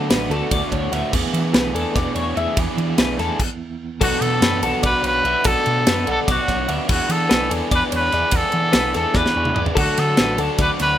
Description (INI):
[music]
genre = math rock and midwest emo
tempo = 292 BPM (eighths)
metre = 7/8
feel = straight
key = unclear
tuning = A4 = 440 Hz
[part]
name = twelve-string electric guitar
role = accompaniment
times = 0.0-4.8 s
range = E2 to B3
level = -28 LUFS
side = right 7 dB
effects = tremolo
[part]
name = twelve-string electric guitar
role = arpeggios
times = 0.0-11.0 s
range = A4 to E5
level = -25 LUFS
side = left 6 dB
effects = harmonic tremolo
[part]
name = biting overdriven guitar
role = riff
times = 0.0-11.0 s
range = B2 to G#4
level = -24 LUFS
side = right 1 dB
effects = none
[part]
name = hollow-body short-scale fingered electric bass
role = bass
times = 0.0-11.0 s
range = A1 to E3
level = -26 LUFS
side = equal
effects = none
[part]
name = modern studio drum kit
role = drums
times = 0.1-10.9 s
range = crash cymbal, kick drum, ride cymbal, snare drum, toms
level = -22 LUFS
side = equal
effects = none
[part]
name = clear trumpet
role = melody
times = 4.0-11.0 s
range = F#4 to B4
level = -20 LUFS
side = equal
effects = slapback echo
[sound]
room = light reverb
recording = rough home demo mix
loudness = -17 LUFS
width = side -11 dB against mid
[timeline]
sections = 0.0-4.0 A section; 4.0-11.0 B section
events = stop 3.4-4.0; drum fill 9.2-9.8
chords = 0.0 D6; 1.1 E7sus4; 4.0 Bm7; 6.9 E7sus4; 9.8 D6